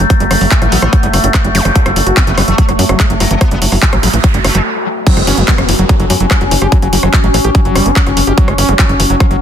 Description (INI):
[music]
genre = psychedelic trance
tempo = 145 BPM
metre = 4/4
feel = straight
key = F# phrygian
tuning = A4 = 444 Hz
[part]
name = overtone-sweeping drone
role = sustained chords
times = 0.0-9.4 s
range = F#3 to C#4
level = -16 LUFS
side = left 1 dB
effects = chorus, built-in reverb, sidechain pumping
[part]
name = overdriven acid bass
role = riff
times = 0.0-9.4 s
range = E3 to G4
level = -18 LUFS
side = equal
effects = distortion, auto-pan, sidechain pumping, ping-pong delay
[part]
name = tight sequencer bass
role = bass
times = 0.0-9.4 s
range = F#1 to F#2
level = -14 LUFS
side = equal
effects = none
[part]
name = big-room dance drum kit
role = drums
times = 0.0-9.4 s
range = crash cymbal, handclaps, hi-hat, rim click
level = -16 LUFS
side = equal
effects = overdrive
[part]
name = electronic kick drum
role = drums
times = 0.1-9.3 s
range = none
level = -11 LUFS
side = equal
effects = overdrive
[part]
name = metallic wobble bass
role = second line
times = 0.6-4.7 s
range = F#3 to B3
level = -25 LUFS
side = left 2 dB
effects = distortion, analog chorus, sidechain pumping, high-pass filter, tape echo
[part]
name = zap, noise sweep and downlifter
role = sound effects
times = 1.5-8.4 s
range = none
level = -20 LUFS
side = equal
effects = none
[sound]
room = digital ambience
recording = dense, heavily limited modern master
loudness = -8 LUFS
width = side -9 dB against mid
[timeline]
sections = 0.0-5.1 A section; 5.1-9.4 B section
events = filter sweep on acid bass 0.0-5.1; noise sweep 3.6-5.1; stop 4.7-5.1; drop 5.1-9.4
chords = 0.0 F#5